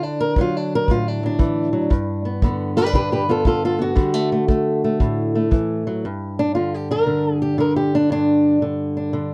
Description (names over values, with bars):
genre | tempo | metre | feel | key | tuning
acoustic country blues, solo or duo | 116 BPM | 4/4 | swing 66% on 8ths | G major | A4 = 441 Hz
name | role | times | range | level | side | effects
fingerpicked old ladder-braced acoustic guitar | melody | 0.0-9.3 s | G2 to B4 | -20 LUFS | equal | none
kick drum | drums | 0.4-5.7 s | none | -20 LUFS | equal | none
room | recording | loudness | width
light reverb | dry, close 1970s-style studio recording | -20 LUFS | mono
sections
0.0-6.0 A section; 6.0-9.3 A section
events
steel-string acoustic guitar solo 0.0-6.0, 6.0-9.3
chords
0.0 D; 1.9 G; 4.0 D; 6.0 G5